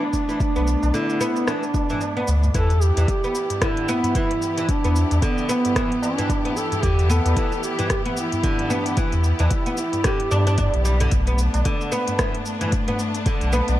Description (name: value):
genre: organic downtempo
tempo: 112 BPM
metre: 4/4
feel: swing 58% on 16ths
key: E minor pentatonic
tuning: A4 = 440 Hz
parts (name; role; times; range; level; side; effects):
- mellow duduk; melody; 0.0-10.5 s; B3 to A4; -25 LUFS; right 1 dB; tape echo, shimmer reverb
- bright studio string section; sustained chords; 0.0-13.8 s; E3 to G4; -30 LUFS; left 1 dB; sidechain pumping, shimmer reverb
- tabla; percussion; 0.0-13.8 s; none; -32 LUFS; equal; none
- electronic kick drum; drums; 0.1-13.4 s; none; -24 LUFS; equal; overdrive
- organic electronic drum kit; drums; 0.1-13.8 s; hi-hat, rim click, shaker; -30 LUFS; equal; none
- oud; arpeggios; 0.3-13.8 s; D3 to D4; -26 LUFS; equal; tape echo, shimmer reverb
- warm sub bass; bass; 0.6-13.8 s; B1 to G2; -18 LUFS; equal; sidechain pumping
room: light reverb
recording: dark, warm production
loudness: -19 LUFS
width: side -14 dB against mid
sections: 0.0-2.5 A section; 2.5-13.8 B section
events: kick drops out 2.0-2.5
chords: 0.0 Bm7; 2.5 Em7; 11.1 Bm7